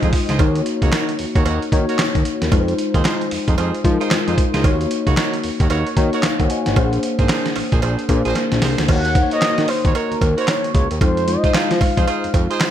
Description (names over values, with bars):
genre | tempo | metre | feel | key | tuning
R&B, new jack swing | 113 BPM | 4/4 | swing 62% on 16ths | Eb dorian | A4 = 438 Hz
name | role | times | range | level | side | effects
mellow tine electric piano | accompaniment | 0.0-12.7 s | Ab3 to Ab5 | -21 LUFS | left 3 dB | ensemble chorus
warm horn section | stabs | 0.0-12.6 s | D4 to Db5 | -26 LUFS | right 5 dB | digital delay
fat analog bass | bass | 0.0-12.5 s | Ab1 to F3 | -21 LUFS | equal | none
dusty soul sampler-style drum kit | drums | 0.0-12.7 s | crash cymbal, handclaps, hi-hat, kick drum, snare drum | -19 LUFS | equal | none
cowbell | percussion | 0.4-12.7 s | none | -32 LUFS | right 10 dB | none
mellow horn-like synth lead | melody | 8.9-12.7 s | Bb4 to Gb5 | -22 LUFS | equal | chorus, digital delay
room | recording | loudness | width
light reverb | bright 1980s-style digital production | -15 LUFS | side -10 dB against mid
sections
0.0-8.9 A section; 8.9-12.7 B section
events
drum fill 8.4-8.9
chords
0.4 Ebm7; 2.5 Fm7; 4.6 Ebm7; 6.8 Bb9; 8.9 Ebm7; 11.0 Fm7